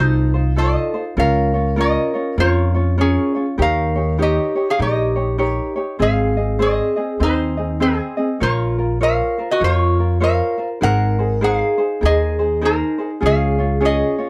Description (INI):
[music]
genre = Hawaiian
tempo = 100 BPM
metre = 4/4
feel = swing 62% on 8ths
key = unclear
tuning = A4 = 440 Hz
[part]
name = lap resonator guitar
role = melody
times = 0.0-14.3 s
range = C4 to Gb5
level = -23 LUFS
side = equal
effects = none
[part]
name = vibraphone with medium mallets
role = second line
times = 0.0-14.3 s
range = C4 to Bb4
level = -26 LUFS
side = equal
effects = none
[part]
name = ukulele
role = accompaniment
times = 0.0-14.3 s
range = C4 to Eb5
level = -25 LUFS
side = equal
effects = none
[part]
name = upright bass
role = bass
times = 0.0-14.0 s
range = Ab1 to F2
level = -22 LUFS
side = equal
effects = none
[sound]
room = little or no reverb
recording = dry, close 1970s-style studio recording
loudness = -18 LUFS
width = mono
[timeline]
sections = 0.0-14.3 A section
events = none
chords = 0.0 F7/C; 1.2 Bbm/Db; 3.6 Eb7; 6.0 Ab; 8.4 Bbmadd9; 10.8 Abadd9; 13.2 Db